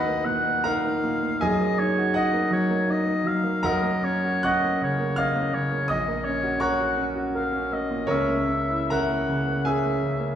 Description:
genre	classical, romantic duo for oboe and grand piano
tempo	81 BPM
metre	3/4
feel	uneven beats, rubato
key	unclear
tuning	A4 = 441 Hz
part	warm oboe	melody	0.0-10.4 s	Db5 to F#5	-27 LUFS	left 2 dB	none
part	clear concert grand piano	accompaniment	0.0-10.4 s	Bb1 to Gb6	-23 LUFS	right 1 dB	none
room	wet recital hall reverb, RT60 1.4 s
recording	heard from further back in the room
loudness	-22 LUFS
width	side -9 dB against mid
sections	0.0-10.4 A section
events	none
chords	0.0 Ebm; 1.4 Ebm/Gb; 3.6 Gb; 5.9 Gb/Bb; 8.1 A#dim/C#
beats	0.63 | 1.41 2.15 2.89 | 3.64 4.45 5.17 | 5.88 6.61 7.34 | 8.08 8.90 9.65

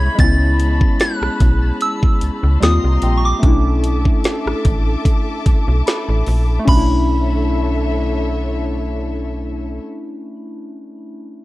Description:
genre	contemporary R&B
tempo	74 BPM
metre	4/4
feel	swing 54% on 16ths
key	B dorian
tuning	A4 = 439 Hz
part	soft synth bell	melody	0.0-9.8 s	B5 to A6	-24 LUFS	right 1 dB	chorus, phaser, ping-pong delay
part	warm analog keys	accompaniment	0.0-11.4 s	G3 to E#4	-22 LUFS	left 1 dB	chorus
part	warm studio string section	sustained chords	0.0-9.8 s	D3 to D6	-26 LUFS	left 2 dB	sidechain pumping
part	slap-like FM bass	bass	0.0-9.8 s	A1 to D#2	-17 LUFS	equal	none
part	celesta	texture	0.0-9.8 s	F#5 to B5	-34 LUFS	right 2 dB	none
part	trap drum kit	drums	0.2-6.9 s	crash cymbal, hi-hat, kick drum, rim click, snare drum	-16 LUFS	equal	none
room	digital ambience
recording	worn, warbling old tape, cassette tape, warbly pitch drift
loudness	-14 LUFS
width	side -18 dB against mid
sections	0.0-6.7 A section; 6.7-9.9 B section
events	none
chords	0.2 Amaj9; 2.6 D#6; 3.4 Bm11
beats	| 0.19 1.00 1.81 2.62 | 3.43 4.24 5.05 5.86 | 6.67 7.49 8.30 9.11

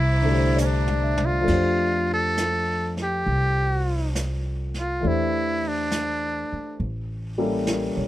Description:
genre	jazz ballad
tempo	68 BPM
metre	4/4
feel	swing 67% on 8ths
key	F major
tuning	A4 = 442 Hz
part	trumpet with metal mute	melody	0.0-6.8 s	Db4 to A4	-25 LUFS	equal	none
part	warm studio string section	sustained chords	0.0-1.5 s	C5 to D6	-35 LUFS	right 2 dB	none
part	upright bass	bass	0.0-8.1 s	A1 to F2	-25 LUFS	equal	none
part	warm grand piano	accompaniment	0.2-8.1 s	D3 to E5	-27 LUFS	left 2 dB	none
part	vintage brush drum kit	drums	0.6-8.1 s	brushed snare drum, hi-hat, kick drum, ride cymbal, snare drum, toms	-33 LUFS	right 1 dB	none
room	light reverb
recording	none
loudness	-21 LUFS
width	side -14 dB against mid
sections	0.0-1.5 A section; 1.5-8.1 B section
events	drum fill 0.6-1.5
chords	0.0 C9; 1.5 F69; 5.0 C69/E; 6.8 A7b9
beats	0.58 | 1.48 2.38 3.27 4.15 | 5.04 5.92 6.80 7.67

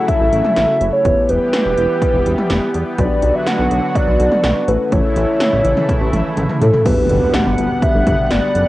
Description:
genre	synth-pop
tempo	124 BPM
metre	4/4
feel	straight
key	unclear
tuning	A4 = 441 Hz
part	hollow clarinet-like synth lead	melody	0.0-8.7 s	A4 to F#5	-17 LUFS	equal	chorus, phaser, cassette tape
part	mellow tine electric piano	accompaniment	0.0-8.7 s	A3 to B4	-24 LUFS	left 4 dB	cassette tape
part	lush unison pad	sustained chords	0.0-8.7 s	C#3 to F#5	-21 LUFS	equal	chorus, cassette tape
part	80s electronic pad drums	drums	0.1-8.7 s	crash cymbal, hi-hat, kick drum, snare drum, toms	-19 LUFS	equal	gated reverb on snare and toms, cassette tape
part	chorused synth bass	bass	0.2-8.6 s	E1 to A2	-18 LUFS	equal	none
part	impact	sound effects	6.9-8.7 s	none	-24 LUFS	equal	none
room	moderate small room reverb, RT60 0.5 s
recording	home recording on cassette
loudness	-13 LUFS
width	side -16 dB against mid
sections	0.0-6.9 A section; 6.9-8.7 B section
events	drum fill 5.9-6.9; impact 6.9-8.7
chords	0.0 A6; 1.1 Em; 3.0 Bm; 4.7 A; 6.9 Gmaj7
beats	0.08 0.57 | 1.05 1.53 2.02 2.50 | 2.99 3.47 3.95 4.44 | 4.92 5.41 5.89 6.37 | 6.86 7.34 7.82 8.31

